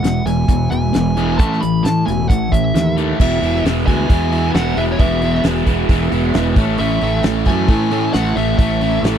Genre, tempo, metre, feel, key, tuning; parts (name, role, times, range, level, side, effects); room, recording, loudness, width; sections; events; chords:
classic rock; 133 BPM; 4/4; straight; E major; A4 = 439 Hz
fuzz lead guitar; melody; 0.0-9.0 s; C#5 to B5; -23 LUFS; equal; distortion, tape echo
mellow tonewheel organ; sustained chords; 0.0-9.2 s; E4 to E5; -32 LUFS; equal
crunchy overdriven guitar; riff; 0.0-9.2 s; A2 to E4; -21 LUFS; right 16 dB; phaser
distorted electric guitar; riff; 0.0-9.2 s; E2 to A3; -21 LUFS; left 13 dB; distortion
fuzz fingered electric bass; bass; 0.0-9.2 s; E1 to A2; -20 LUFS; equal; overdrive
damped 70s drum kit; drums; 0.0-9.2 s; crash cymbal, hi-hat, kick drum, snare drum; -16 LUFS; equal
little or no reverb; dry, close 1970s-style studio recording; -14 LUFS; side -9 dB against mid
0.0-3.2 A section; 3.2-9.2 B section
0.0 E; 1.4 A; 3.2 E; 6.6 A